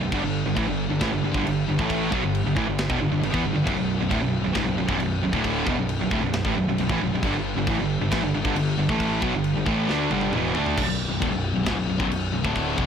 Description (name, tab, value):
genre	heavy metal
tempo	135 BPM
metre	4/4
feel	straight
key	B minor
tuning	A4 = 440 Hz
part	distorted electric guitar	riff	0.0-12.9 s	B1 to D4	-28 LUFS	equal	distortion
part	heavy high-gain guitar	riff	0.0-10.8 s	B1 to D4	-26 LUFS	right 8 dB	distortion
part	sludgy distorted guitar	riff	0.0-12.9 s	B1 to D4	-29 LUFS	left 9 dB	overdrive
part	fuzz picked electric bass	bass	0.0-12.9 s	B0 to E2	-30 LUFS	equal	overdrive
part	tight metal drum kit	drums	0.1-12.9 s	crash cymbal, kick drum, snare drum, toms	-29 LUFS	left 1 dB	soft clipping on kick
room	small room ambience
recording	blown-out, overdriven recording, overdrive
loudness	-21 LUFS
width	side -7 dB against mid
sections	0.0-10.8 A section; 10.8-12.9 A section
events	drum fill 9.9-10.8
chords	0.1 G5; 3.7 Bm; 7.2 G5; 10.8 Bm